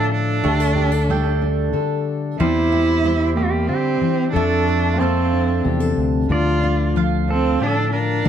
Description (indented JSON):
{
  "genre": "acoustic folk duo or small band",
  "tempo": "92 BPM",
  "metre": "3/4",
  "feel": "straight",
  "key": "unclear",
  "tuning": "A4 = 439 Hz",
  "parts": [
    { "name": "warm cello", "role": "melody", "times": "0.0-8.3 s", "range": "A3 to F4", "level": "-21 LUFS", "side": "right 3 dB", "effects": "none" },
    { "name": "pedal steel guitar", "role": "second line", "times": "0.0-8.3 s", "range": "F4 to D5", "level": "-26 LUFS", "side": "right 3 dB", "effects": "none" },
    { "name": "fingerpicked steel-string acoustic guitar", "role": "accompaniment", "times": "0.0-8.3 s", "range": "A2 to A4", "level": "-22 LUFS", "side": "left 5 dB", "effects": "none" },
    { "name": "mandolin", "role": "arpeggios", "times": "0.0-8.3 s", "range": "G3 to G5", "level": "-28 LUFS", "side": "right 9 dB", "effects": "none" },
    { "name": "fingered electric bass", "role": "bass", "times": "0.4-8.3 s", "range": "D2 to F2", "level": "-21 LUFS", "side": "equal", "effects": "none" }
  ],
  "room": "light reverb",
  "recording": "dark, warm production",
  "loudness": "-16 LUFS",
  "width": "side -9 dB against mid",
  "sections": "0.0-8.3 A section",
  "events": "none",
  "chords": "0.4 Gsus2/D; 2.4 C/E; 4.4 F6; 6.3 Dm"
}